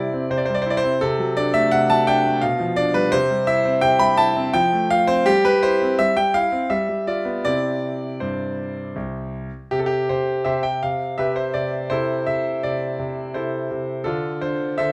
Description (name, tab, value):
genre	classical-period piano sonatina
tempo	83 BPM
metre	3/4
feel	rubato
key	C major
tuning	A4 = 441 Hz
part	clear concert grand piano	solo	0.0-14.9 s	C2 to B5	-21 LUFS	equal	none
room	light reverb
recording	close, detailed microphones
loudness	-21 LUFS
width	mono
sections	0.0-9.7 A section; 9.7-14.9 B section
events	none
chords	0.0 C; 1.0 D7/C; 2.4 G7/B; 3.1 C; 4.5 F; 5.3 C/G; 6.7 G7; 7.4 C; 9.7 C5; 11.2 Cmaj9; 11.9 Am/C; 14.1 Dm7